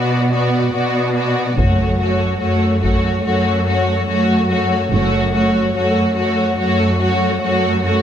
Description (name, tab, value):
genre	cinematic, epic orchestral film score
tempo	72 BPM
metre	4/4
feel	straight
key	unclear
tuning	A4 = 440 Hz
part	rich studio violin section	melody	0.0-8.0 s	C#5 to D5	-23 LUFS	left 1 dB	none
part	rich symphonic violin section	second line	0.0-8.0 s	F#4	-20 LUFS	left 3 dB	none
part	warm symphonic viola section	accompaniment	0.0-8.0 s	A3 to B3	-20 LUFS	right 1 dB	none
part	rich symphonic cello section	bass	0.0-8.0 s	F#2 to B2	-19 LUFS	right 1 dB	none
part	warm symphonic double bass section	bass	1.6-5.6 s	F#1	-21 LUFS	right 2 dB	none
part	taiko ensemble	drums	1.6-3.2 s	none	-22 LUFS	equal	none
room	light reverb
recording	none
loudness	-14 LUFS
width	side -9 dB against mid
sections	0.0-8.0 A section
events	build-up 0.0-8.0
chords	0.0 Bm; 1.6 F#m